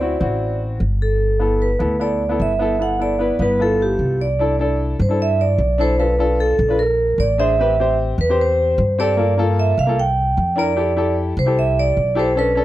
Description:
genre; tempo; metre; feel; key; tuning
Afro-Cuban jazz; 150 BPM; 4/4; straight; G major, C major from 4.4 s; A4 = 437 Hz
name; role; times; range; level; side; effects
vibraphone with medium mallets; melody; 0.0-12.6 s; G4 to G5; -19 LUFS; right 2 dB; none
warm concert grand piano; accompaniment; 0.0-12.6 s; Bb3 to C5; -22 LUFS; left 3 dB; none
upright bass; bass; 0.0-12.6 s; G1 to G2; -20 LUFS; equal; none
room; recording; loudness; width
small room ambience; dry, close 1970s-style studio recording; -16 LUFS; side -14 dB against mid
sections
0.0-4.4 A section; 4.4-12.6 B section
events
none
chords
0.0 D9; 1.2 G69; 3.6 G13; 4.4 C6; 6.0 Bm7b5; 6.8 Bb9; 7.6 Am7; 9.2 Gm7; 10.0 C7; 10.8 Fmaj7

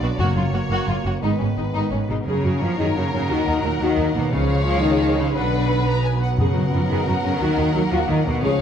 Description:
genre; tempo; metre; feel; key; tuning
cinematic; 117 BPM (dotted quarters); 6/8; straight; F# major; A4 = 440 Hz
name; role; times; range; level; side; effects
rich symphonic violin section; melody; 0.0-8.6 s; B4 to A#5; -32 LUFS; left 4 dB; none
rich symphonic violin section; second line; 0.0-8.6 s; C#4 to C#5; -28 LUFS; left 3 dB; none
warm symphonic viola section; accompaniment; 0.0-8.6 s; G#3 to B4; -28 LUFS; right 1 dB; none
bright trombone section; sustained chords; 0.0-8.6 s; D#3 to D4; -29 LUFS; right 3 dB; none
clear symphonic cello section; bass; 0.0-8.6 s; F#2 to F#3; -25 LUFS; right 2 dB; none
clear symphonic double bass section; bass; 0.0-8.5 s; F#1 to F#2; -24 LUFS; right 2 dB; none
timpani; percussion; 0.2-0.7, 4.3-8.6 s; F#2 to C#3; -25 LUFS; left 1 dB; none
mellow French horn section; sustained chords; 2.1-8.6 s; A#3 to F#4; -25 LUFS; left 5 dB; none
room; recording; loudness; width
wet recital hall reverb, RT60 1.4 s; dark, warm production; -18 LUFS; side -8 dB against mid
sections
0.0-2.3 A section; 2.3-8.6 B section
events
build-up 0.0-2.3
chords
0.2 F#; 1.2 G#m; 2.3 F#add9; 3.3 D#m; 4.3 C#; 5.3 Bm; 6.4 F#add9; 7.4 D#m

